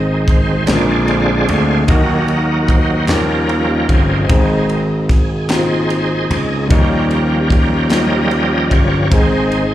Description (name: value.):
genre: slow gospel.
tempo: 50 BPM (dotted quarters).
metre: 6/8.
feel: straight.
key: unclear.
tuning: A4 = 442 Hz.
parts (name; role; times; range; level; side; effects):
dark concert grand piano; accompaniment; 0.0-9.7 s; Ab2 to Bb4; -19 LUFS; left 2 dB; slapback echo.
bright tonewheel organ; sustained chords; 0.0-9.7 s; D3 to Eb5; -17 LUFS; right 2 dB; slow rotary speaker, chorus vibrato.
gritty slap bass; bass; 0.0-9.7 s; G1 to Eb2; -17 LUFS; equal; overdrive.
crisp fusion drum kit; drums; 0.3-9.7 s; kick drum, ride cymbal, snare drum; -17 LUFS; equal; none.
group handclap; percussion; 0.7-8.3 s; none; -28 LUFS; left 2 dB; none.
room: small room ambience.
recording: live gig heard through the venue's PA, club reverb.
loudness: -12 LUFS.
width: side -13 dB against mid.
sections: 0.0-9.7 A section.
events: tonewheel organ solo 0.0-9.7.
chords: 0.0 Ab; 0.7 Bb7; 1.9 Ebm; 3.1 Eb9; 4.3 Ab; 6.7 Eb7; 9.1 Ab.